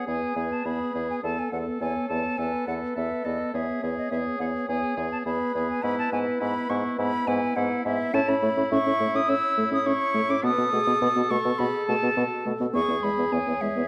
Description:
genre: quick classical-period movement for wind quintet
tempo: 104 BPM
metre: 4/4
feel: straight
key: E major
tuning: A4 = 437 Hz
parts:
  - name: bright concert flute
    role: melody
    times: 0.0-13.9 s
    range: D#5 to E6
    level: -31 LUFS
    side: equal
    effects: none
  - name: clear oboe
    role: second line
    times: 0.0-13.9 s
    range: E4 to A4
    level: -36 LUFS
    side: equal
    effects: none
  - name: mellow French horn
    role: accompaniment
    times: 0.0-13.8 s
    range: G#3 to C#4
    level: -32 LUFS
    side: equal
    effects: none
  - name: warm clarinet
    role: accompaniment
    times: 0.0-13.9 s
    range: F#4 to E5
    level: -35 LUFS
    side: equal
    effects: none
  - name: warm bassoon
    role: bass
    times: 0.1-13.8 s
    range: E2 to B2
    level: -32 LUFS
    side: equal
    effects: none
room: moderate recital hall reverb, RT60 1.3 s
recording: dark, warm production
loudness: -26 LUFS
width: mono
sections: 0.0-13.9 A section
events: none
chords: 0.0 E; 1.2 Eadd11; 3.5 E; 5.8 E/G#; 8.1 A; 10.4 B7; 12.7 E

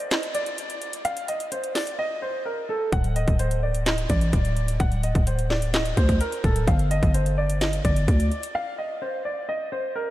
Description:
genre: hip hop, trap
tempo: 128 BPM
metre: 4/4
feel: half-time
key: G minor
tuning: A4 = 440 Hz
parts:
  - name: warm baby grand piano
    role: melody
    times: 0.0-10.1 s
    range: A4 to F#5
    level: -28 LUFS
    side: equal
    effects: low-pass filter, diffuse ambient delay
  - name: trap drum kit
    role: drums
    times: 0.0-8.5 s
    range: handclaps, hi-hat, kick drum, snare drum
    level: -25 LUFS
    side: equal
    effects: none
  - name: growling 808-style bass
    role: bass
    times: 2.9-8.3 s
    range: D1 to D2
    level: -23 LUFS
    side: equal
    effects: none
room: light reverb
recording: lossy compression artefacts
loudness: -22 LUFS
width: side -15 dB against mid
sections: 0.0-10.1 A section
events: break 0.0-2.9, 8.6-10.1; drums muted 2.0-2.9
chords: 0.0 N.C.; 2.9 D5; 6.7 G5

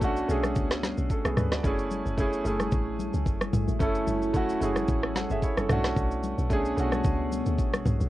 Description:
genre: amapiano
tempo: 111 BPM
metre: 4/4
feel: swing 55% on 16ths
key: F# minor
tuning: A4 = 440 Hz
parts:
  - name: warm grand piano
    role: accompaniment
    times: 0.0-8.1 s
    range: A3 to F#5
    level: -29 LUFS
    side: right 1 dB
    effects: cassette tape
  - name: deep dark ambient pad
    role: sustained chords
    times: 0.0-8.1 s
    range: B2 to G#5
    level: -36 LUFS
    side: left 1 dB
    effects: chorus, built-in reverb, cassette tape
  - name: deep log drum bass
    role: bass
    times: 0.0-8.1 s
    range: F#1 to D2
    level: -31 LUFS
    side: equal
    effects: none
  - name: smooth R&B drum kit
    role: drums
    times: 0.0-8.1 s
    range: kick drum, rim click, shaker, snare drum, toms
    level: -28 LUFS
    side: equal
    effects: none
  - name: congas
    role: percussion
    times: 0.0-8.1 s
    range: none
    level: -36 LUFS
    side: left 3 dB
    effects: none
room: light reverb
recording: home recording on cassette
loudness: -24 LUFS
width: side -15 dB against mid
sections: 0.0-8.1 A section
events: none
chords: 0.0 Bm9; 1.6 F#m9; 5.7 Bm9

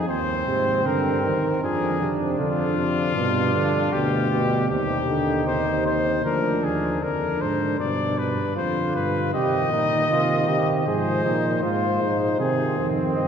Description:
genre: classical, imitative canzona for brass ensemble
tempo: 78 BPM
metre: 4/4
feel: straight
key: unclear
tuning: A4 = 440 Hz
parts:
  - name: clear trumpet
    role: melody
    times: 0.0-13.3 s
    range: F4 to Eb5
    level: -25 LUFS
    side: left 4 dB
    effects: none
  - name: mellow flugelhorn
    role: second line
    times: 0.0-13.3 s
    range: C4 to Ab4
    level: -26 LUFS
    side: right 3 dB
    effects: none
  - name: warm bass trombone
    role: bass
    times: 0.0-13.3 s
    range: D2 to C3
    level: -27 LUFS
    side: right 1 dB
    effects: none
  - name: dark trombone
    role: accompaniment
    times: 0.5-13.3 s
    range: B2 to Ab3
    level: -26 LUFS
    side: right 1 dB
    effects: none
room: wet cathedral reverb, RT60 4.6 s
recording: heard from further back in the room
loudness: -20 LUFS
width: side -7 dB against mid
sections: 0.0-6.2 A section; 6.2-13.3 B section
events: none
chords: 0.1 Cm/Eb; 1.6 Ddim/F; 3.2 G; 4.7 Cm/Eb; 6.2 Ddim; 7.8 G; 9.3 Cm; 10.9 Fm/Ab; 12.4 Ab

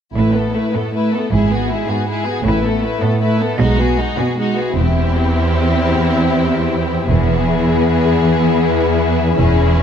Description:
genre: cinematic, heroic adventure film score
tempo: 104 BPM (dotted quarters)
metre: 6/8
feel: straight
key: E major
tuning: A4 = 440 Hz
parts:
  - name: warm symphonic violin section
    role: second line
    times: 0.1-9.8 s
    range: A3 to G#4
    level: -22 LUFS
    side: left 3 dB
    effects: none
  - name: rich symphonic double bass section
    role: bass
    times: 0.1-9.7 s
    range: E1 to B1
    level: -19 LUFS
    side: right 2 dB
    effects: none
  - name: rich symphonic violin section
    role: melody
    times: 0.2-9.8 s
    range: F#4 to B4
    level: -24 LUFS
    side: left 6 dB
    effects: none
  - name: warm symphonic viola section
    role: accompaniment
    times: 0.2-9.8 s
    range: G#3 to C#4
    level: -20 LUFS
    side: right 2 dB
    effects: none
  - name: bright symphonic cello section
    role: bass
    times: 0.2-9.8 s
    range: E2 to B2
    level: -18 LUFS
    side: right 2 dB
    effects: none
  - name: concert harp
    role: arpeggios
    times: 4.8-9.8 s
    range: E2 to E5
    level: -20 LUFS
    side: left 9 dB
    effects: none
room: moderate scoring stage reverb, RT60 1.8 s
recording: dark, warm production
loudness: -13 LUFS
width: side -8 dB against mid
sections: 0.2-4.8 A section; 4.8-9.8 B section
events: build-up 4.8-9.8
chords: 0.2 Asus2; 1.3 Eadd9/G#; 2.5 Asus2; 3.6 B6; 4.8 C/E; 7.1 E

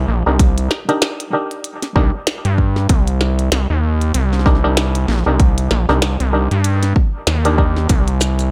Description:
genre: glitch hop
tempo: 96 BPM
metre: 4/4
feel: swing 58% on 16ths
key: C minor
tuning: A4 = 440 Hz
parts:
  - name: muted clav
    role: stabs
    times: 0.0-8.5 s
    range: D4 to Bb4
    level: -23 LUFS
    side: equal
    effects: auto-wah, sidechain pumping, dub echo
  - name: gritty driven synth bass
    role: bass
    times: 0.0-8.5 s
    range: Bb1 to G2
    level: -18 LUFS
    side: equal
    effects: tube saturation
  - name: electronic kick drum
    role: drums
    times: 0.4-8.0 s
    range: none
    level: -16 LUFS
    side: equal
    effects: overdrive, studio reverb
  - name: glitchy drum kit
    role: drums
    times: 0.4-8.5 s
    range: hi-hat, snare drum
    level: -23 LUFS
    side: equal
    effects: studio reverb
  - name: maracas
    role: percussion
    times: 7.9-8.5 s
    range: none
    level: -28 LUFS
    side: equal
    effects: none
room: little or no reverb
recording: echo-heavy mix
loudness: -16 LUFS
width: mono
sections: 0.0-8.5 A section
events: none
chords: 0.0 Cm9

